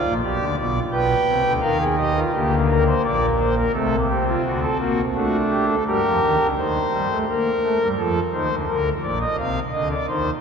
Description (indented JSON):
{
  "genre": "classical, baroque-style 3-part fugue for pipe organ",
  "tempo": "85 BPM",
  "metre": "3/4",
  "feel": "straight",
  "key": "C minor",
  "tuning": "A4 = 435 Hz",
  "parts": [
    { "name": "pipe organ, foundations", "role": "solo", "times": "0.0-10.3 s", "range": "Bb1 to G5", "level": "-18 LUFS", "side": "equal", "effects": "none" }
  ],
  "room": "wet cathedral reverb, RT60 6.5 s",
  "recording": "minimal, uncompressed stereo recording",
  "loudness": "-18 LUFS",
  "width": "side -6 dB against mid",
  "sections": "0.0-6.6 A section; 6.6-10.4 B section",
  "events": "none",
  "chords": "0.2 G/B; 1.6 Ebadd9; 2.3 Gm/D; 3.7 Fadd9/C; 4.4 D7; 5.9 Gm; 6.6 Cm/Eb; 8.0 F; 8.7 Bb",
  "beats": "| 0.23 0.93 1.63 | 2.33 3.04 3.74 | 4.45 5.15 5.85 | 6.56 7.27 7.98 | 8.68 9.39 10.09"
}